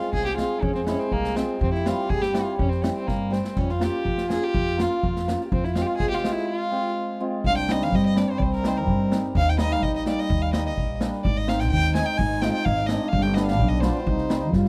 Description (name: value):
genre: klezmer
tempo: 125 BPM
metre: 2/4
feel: straight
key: F harmonic minor, C minor from 7.4 s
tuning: A4 = 440 Hz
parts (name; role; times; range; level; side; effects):
- rich violin; melody; 0.0-14.7 s; Bb3 to Ab5; -30 LUFS; equal; tape echo
- breathy trombone; second line; 0.0-14.7 s; C4 to Ab4; -31 LUFS; equal; none
- hammered dulcimer; accompaniment; 0.0-14.7 s; G3 to Ab4; -32 LUFS; equal; none
- street-band drum kit; drums; 0.0-14.7 s; kick drum, snare drum, splash cymbal; -31 LUFS; equal; none
- upright bass; bass; 0.1-14.7 s; G1 to G2; -28 LUFS; equal; none
room: little or no reverb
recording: dry, close 1970s-style studio recording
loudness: -24 LUFS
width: mono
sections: 0.0-7.4 A section; 7.4-14.7 B section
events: speeding up 0.0-14.7; drum fill 3.1-3.6; break 6.5-7.4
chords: 0.0 Fm; 1.6 C/F; 3.6 Bbm/F; 5.5 Fm; 7.4 Cm; 9.4 Eb; 11.2 Ab; 13.1 G; 14.1 Cm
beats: 0.13 | 0.62 1.12 | 1.61 2.10 | 2.59 3.08 | 3.57 4.05 | 4.54 5.03 | 5.51 6.00 | 6.48 6.96 | 7.44 7.92 | 8.40 8.88 | 9.35 9.83 | 10.30 10.78 | 11.25 11.72 | 12.19 12.66 | 13.13 13.60 | 14.07 14.54